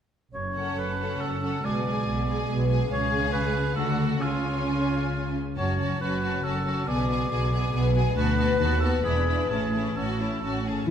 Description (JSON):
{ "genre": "classical", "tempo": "127-144 BPM", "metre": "3/4", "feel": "rubato", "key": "F# minor", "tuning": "A4 = 444 Hz", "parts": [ { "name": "warm oboe", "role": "second line", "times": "0.3-10.7 s", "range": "E#4 to D5", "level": "-31 LUFS", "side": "equal", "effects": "none" }, { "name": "concert harp", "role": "arpeggios", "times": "0.3-10.9 s", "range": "F#2 to C#5", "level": "-31 LUFS", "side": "left 6 dB", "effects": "none" }, { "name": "rich studio cello section", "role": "bass", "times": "0.3-10.8 s", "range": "D2 to D3", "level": "-30 LUFS", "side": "right 2 dB", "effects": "none" }, { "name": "rich studio double bass section", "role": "bass", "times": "0.3-10.9 s", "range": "E1 to D#2", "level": "-29 LUFS", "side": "right 2 dB", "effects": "none" }, { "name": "rich symphonic violin section", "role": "melody", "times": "0.5-10.9 s", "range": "E#5 to B5", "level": "-38 LUFS", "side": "left 4 dB", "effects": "none" }, { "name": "bright symphonic violin section", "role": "second line", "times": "0.6-10.9 s", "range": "E4 to A4", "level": "-36 LUFS", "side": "left 1 dB", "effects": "none" }, { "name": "warm symphonic viola section", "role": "accompaniment", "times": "0.6-10.9 s", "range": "G#3 to D4", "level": "-32 LUFS", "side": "right 1 dB", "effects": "none" } ], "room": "wet scoring stage reverb, RT60 1.8 s", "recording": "none", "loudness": "-23 LUFS", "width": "side -8 dB against mid", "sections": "0.3-10.9 A section", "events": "none", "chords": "0.3 F#m; 1.6 G#dim/B; 2.9 C#; 3.8 D; 4.2 C#; 5.6 F#m; 6.9 G#dim/B; 8.2 Bm7/D; 8.6 B7/D#; 9.0 E7; 9.5 A" }